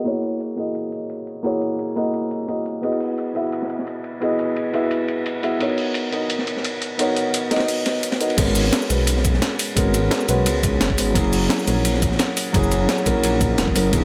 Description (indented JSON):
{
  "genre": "liquid drum and bass",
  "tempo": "173 BPM",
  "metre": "4/4",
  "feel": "swing 53% on 16ths",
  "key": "unclear",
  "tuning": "A4 = 440 Hz",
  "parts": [
    { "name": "felt-muted upright piano", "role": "accompaniment", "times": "0.0-14.0 s", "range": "F#3 to E5", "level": "-24 LUFS", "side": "equal", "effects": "digital delay" },
    { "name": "breakbeat sampler-style drum kit", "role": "drums", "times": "0.1-14.0 s", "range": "crash cymbal, hi-hat, shaker, snare drum", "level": "-27 LUFS", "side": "equal", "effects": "none" },
    { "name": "crunchy breakbeat drum kit", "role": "drums", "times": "2.8-14.0 s", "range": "hi-hat, ride cymbal, snare drum", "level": "-30 LUFS", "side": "equal", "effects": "high-pass filter on cymbals, high-pass filter on hats, high-pass filter on snare, high-pass filter on room" },
    { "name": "swelling detuned saw bass", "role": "bass", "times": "8.4-14.0 s", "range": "E1 to C#2", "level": "-24 LUFS", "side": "equal", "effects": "none" },
    { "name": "electronic kick drum", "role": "drums", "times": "8.4-14.0 s", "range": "none", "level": "-25 LUFS", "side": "equal", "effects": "none" }
  ],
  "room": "light reverb",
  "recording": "low-pass filter",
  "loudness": "-21 LUFS",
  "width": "mono",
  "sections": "0.0-8.4 A section; 8.4-14.0 B section",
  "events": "filter sweep on drum 0.0-8.4; filter sweep 0.0-8.4; drop 8.4-14.0",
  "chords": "0.1 F#9; 2.8 Emaj9; 5.6 Bmaj9; 8.4 G#m11; 11.2 F#9",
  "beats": "| 0.06 0.40 0.75 1.10 | 1.44 1.79 2.14 2.48 | 2.83 3.18 3.52 3.87 | 4.22 4.57 4.91 5.26 | 5.61 5.95 6.30 6.65 | 6.99 7.34 7.69 8.03 | 8.38 8.73 9.07 9.42 | 9.77 10.11 10.46 10.81 | 11.15 11.50 11.85 12.20 | 12.54 12.89 13.24 13.58 | 13.93"
}